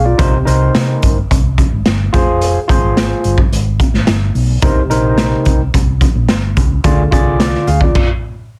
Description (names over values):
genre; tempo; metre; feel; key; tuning
uptempo 1960s-style soul; 108 BPM; 4/4; straight; C minor; A4 = 440 Hz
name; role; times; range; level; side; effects
overdriven tine electric piano; accompaniment; 0.0-8.1 s; C3 to F5; -18 LUFS; equal; lush chorus
hollow-body short-scale fingered electric bass; bass; 0.0-7.9 s; F1 to C3; -18 LUFS; equal; none
raw garage drum kit; drums; 0.2-8.1 s; crash cymbal, hi-hat, kick drum, snare drum; -16 LUFS; equal; none
room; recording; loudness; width
light reverb; heavily compressed radio sound, multiband compression; -13 LUFS; mono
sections
0.0-8.6 A section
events
stop 8.0-8.6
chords
0.2 Cm7; 2.1 Fm; 4.6 Cm7; 6.8 Ddim; 8.0 N.C.